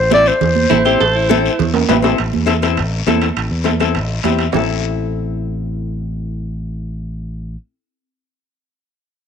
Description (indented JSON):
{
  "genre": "latin, cumbia",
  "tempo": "204 BPM",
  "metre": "4/4",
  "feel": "straight",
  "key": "A minor",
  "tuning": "A4 = 439 Hz",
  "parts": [
    { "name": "breathy clarinet", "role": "melody", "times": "0.0-1.9 s", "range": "C5 to D5", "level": "-15 LUFS", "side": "equal", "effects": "none" },
    { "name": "fingered electric bass", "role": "bass", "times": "0.0-7.6 s", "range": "A1 to E2", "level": "-20 LUFS", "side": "equal", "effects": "none" },
    { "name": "nylon-string guitar", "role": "accompaniment", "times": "0.1-7.6 s", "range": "C4 to B4", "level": "-20 LUFS", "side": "left 11 dB", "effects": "none" },
    { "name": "congas", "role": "percussion", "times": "0.1-4.6 s", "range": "none", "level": "-20 LUFS", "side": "right 9 dB", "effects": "none" },
    { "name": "guiro", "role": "percussion", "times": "0.1-4.6 s", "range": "none", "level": "-27 LUFS", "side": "left 13 dB", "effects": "none" },
    { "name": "cowbell and timbales", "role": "percussion", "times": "0.4-4.6 s", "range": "none", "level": "-23 LUFS", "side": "right 10 dB", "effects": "none" },
    { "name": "clean electric guitar", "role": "second line", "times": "0.7-1.7 s", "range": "E4 to A4", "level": "-20 LUFS", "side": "right 10 dB", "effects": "none" }
  ],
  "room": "light reverb, small room reverb",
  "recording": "1960s-style stereo with parts hard left and right",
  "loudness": "-14 LUFS",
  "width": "side -7 dB against mid",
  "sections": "0.0-2.2 A section; 2.2-4.5 B section; 4.5-6.9 C section",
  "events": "drum fill 1.7-2.2",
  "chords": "0.0 Am"
}